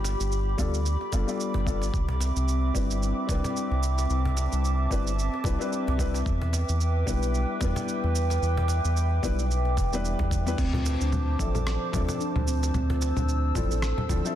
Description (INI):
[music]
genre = organic downtempo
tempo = 111 BPM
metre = 4/4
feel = swing 57% on 16ths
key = D dorian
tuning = A4 = 440 Hz
[part]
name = felt-muted upright piano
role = accompaniment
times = 0.0-14.4 s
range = F3 to E5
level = -33 LUFS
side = left 4 dB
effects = sidechain pumping, low-pass filter, ping-pong delay
[part]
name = warbly tape-like pad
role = sustained chords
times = 0.0-14.4 s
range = C4 to E6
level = -32 LUFS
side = right 1 dB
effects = chorus, built-in reverb, sidechain pumping
[part]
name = round analog bass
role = bass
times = 0.0-14.2 s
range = E1 to E2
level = -26 LUFS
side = equal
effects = sidechain pumping
[part]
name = cajon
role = percussion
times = 0.0-14.2 s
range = none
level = -38 LUFS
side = equal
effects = none
[part]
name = dusty soul sampler-style drum kit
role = drums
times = 0.1-14.3 s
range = congas, crash cymbal, rim click, shaker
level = -34 LUFS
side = equal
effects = overdrive, small room ambience
[part]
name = electronic kick drum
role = drums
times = 0.6-14.2 s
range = none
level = -29 LUFS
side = equal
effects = overdrive, small room ambience
[part]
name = steel tongue drum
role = arpeggios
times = 10.6-14.4 s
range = C4 to A4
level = -32 LUFS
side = right 1 dB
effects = ping-pong delay
[sound]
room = light reverb, small room ambience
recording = dense, heavily limited modern master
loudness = -24 LUFS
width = side -11 dB against mid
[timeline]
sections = 0.0-14.4 A section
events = filter sweep on felt piano 0.0-14.4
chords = 0.0 G7; 1.9 Cmaj9; 6.3 Em7; 10.6 Dm7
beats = 0.32 0.86 1.40 | 1.94 2.48 3.02 3.56 | 4.10 4.64 5.18 5.72 | 6.26 6.80 7.34 7.88 | 8.42 8.96 9.51 10.05 | 10.59 11.13 11.67 12.21 | 12.75 13.29 13.83